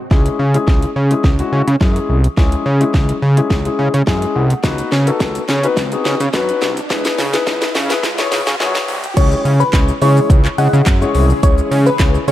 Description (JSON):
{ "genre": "dance-pop", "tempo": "106 BPM", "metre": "4/4", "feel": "straight", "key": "C# minor", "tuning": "A4 = 442 Hz", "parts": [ { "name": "string machine, cellos", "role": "sustained chords", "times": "0.0-0.1, 9.2-12.3 s", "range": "C#3 to G#4", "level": "-26 LUFS", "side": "equal", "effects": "none" }, { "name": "dark concert grand piano", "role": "accompaniment", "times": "0.1-12.3 s", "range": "G#3 to G#5", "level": "-19 LUFS", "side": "left 5 dB", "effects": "sidechain pumping" }, { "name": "fat analog bass", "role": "bass", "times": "0.1-12.3 s", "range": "B#1 to C#3", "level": "-15 LUFS", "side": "equal", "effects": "sidechain pumping" }, { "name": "house drum kit", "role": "drums", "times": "0.1-12.3 s", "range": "crash cymbal, handclaps, hi-hat, kick drum, shaker, snare drum", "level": "-16 LUFS", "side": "equal", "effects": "none" }, { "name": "riser", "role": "sound effects", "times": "2.6-9.2 s", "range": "none", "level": "-28 LUFS", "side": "right 1 dB", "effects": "none" }, { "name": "glassy wavetable pluck", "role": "melody", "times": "9.2-12.3 s", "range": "B4 to F#5", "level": "-20 LUFS", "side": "equal", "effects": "chorus, sidechain pumping" } ], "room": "light reverb", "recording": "dark, warm production, high-pass filter", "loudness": "-12 LUFS", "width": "side -13 dB against mid", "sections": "0.1-9.2 A section; 9.2-12.3 B section", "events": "build-up 0.1-9.2; drum fill 0.1-9.2; filter sweep 0.1-9.2; riser 2.6-9.2; grand piano fill 3.8-4.6; drop 9.2-12.3", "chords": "0.1 C#m; 4.6 B/C#; 6.9 E/C#; 9.2 C#m" }